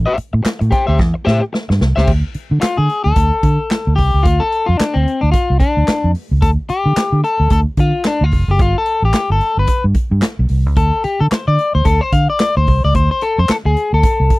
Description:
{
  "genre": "funk",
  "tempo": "110 BPM",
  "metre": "4/4",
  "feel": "swing 60% on 16ths",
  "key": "D dorian",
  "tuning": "A4 = 445 Hz",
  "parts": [
    { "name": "vintage muted fingered electric bass", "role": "bass", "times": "0.0-14.3 s", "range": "F1 to D3", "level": "-14 LUFS", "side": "equal", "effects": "none" },
    { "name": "electric guitar at the edge of break-up", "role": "accompaniment", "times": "0.1-14.4 s", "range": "C4 to G5", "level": "-17 LUFS", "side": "left 3 dB", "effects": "none" },
    { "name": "swinging big-band drum kit", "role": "drums", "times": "0.2-14.4 s", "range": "crash cymbal, handclaps, hi-hat, kick drum, snare drum", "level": "-18 LUFS", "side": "equal", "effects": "none" }
  ],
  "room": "little or no reverb",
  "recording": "dry, close 1970s-style studio recording",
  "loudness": "-12 LUFS",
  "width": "side -20 dB against mid",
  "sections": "0.0-2.1 A section; 2.1-14.4 B section",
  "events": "drum fill 1.0-2.1; clean electric guitar solo 2.1-14.4",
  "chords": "0.0 Am7; 2.1 Dm; 8.6 Gadd9; 10.8 D7(no3)",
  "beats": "0.45 0.99 1.54 | 2.08 2.62 3.16 3.71 | 4.25 4.79 5.34 5.88 | 6.42 6.96 7.51 8.05 | 8.59 9.14 9.68 10.22 | 10.77 11.31 11.86 12.40 | 12.94 13.49 14.03"
}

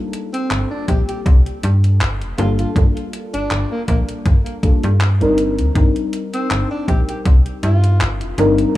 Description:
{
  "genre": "vaporwave",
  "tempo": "80 BPM",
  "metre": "4/4",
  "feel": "swing 55% on 16ths",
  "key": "unclear",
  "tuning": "A4 = 440 Hz",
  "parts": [
    { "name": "mellow FM electric piano", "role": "accompaniment", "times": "0.0-8.8 s", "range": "G3 to Bb4", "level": "-21 LUFS", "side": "left 1 dB", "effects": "analog chorus, cassette tape, tape echo" },
    { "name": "detuned 8-bit digital drum machine", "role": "drums", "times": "0.1-8.7 s", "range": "handclaps, hi-hat", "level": "-27 LUFS", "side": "equal", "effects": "none" },
    { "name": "warm alto saxophone", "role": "melody", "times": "0.3-8.1 s", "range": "Bb3 to G4", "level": "-26 LUFS", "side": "equal", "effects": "tape echo" },
    { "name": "slap-like FM bass", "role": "bass", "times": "0.5-8.6 s", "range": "F1 to G2", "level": "-16 LUFS", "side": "equal", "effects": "none" },
    { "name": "electronic kick drum", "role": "drums", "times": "0.9-7.4 s", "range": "none", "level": "-15 LUFS", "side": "equal", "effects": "none" }
  ],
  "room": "digital ambience",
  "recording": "small room ambience",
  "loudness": "-14 LUFS",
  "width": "side -15 dB against mid",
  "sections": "0.0-8.8 A section",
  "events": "none",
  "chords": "0.0 Gm9; 5.4 Cm9/G",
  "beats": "0.51 1.26 2.01 | 2.76 3.51 4.26 5.01 | 5.76 6.51 7.26 8.01 | 8.76"
}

